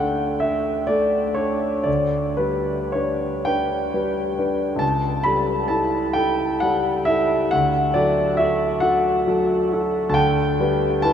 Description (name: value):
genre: classical, romantic nocturne for solo piano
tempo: 36-47 BPM (dotted quarters)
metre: 12/8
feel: rubato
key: D major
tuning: A4 = 436 Hz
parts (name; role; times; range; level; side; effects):
- warm concert grand piano; solo; 0.0-11.1 s; C#2 to B5; -18 LUFS; equal; none
room: wet huge ambient reverb, RT60 8.1 s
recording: in a vast, echoing space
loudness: -18 LUFS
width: side -8 dB against mid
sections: 0.0-11.1 A section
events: none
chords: 0.0 D5; 1.9 G/D; 4.8 A7/C#; 7.5 D; 10.2 Em7/D (rootless)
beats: 0.43 1.87 3.47 | 4.82 6.16 7.53 8.83 | 10.17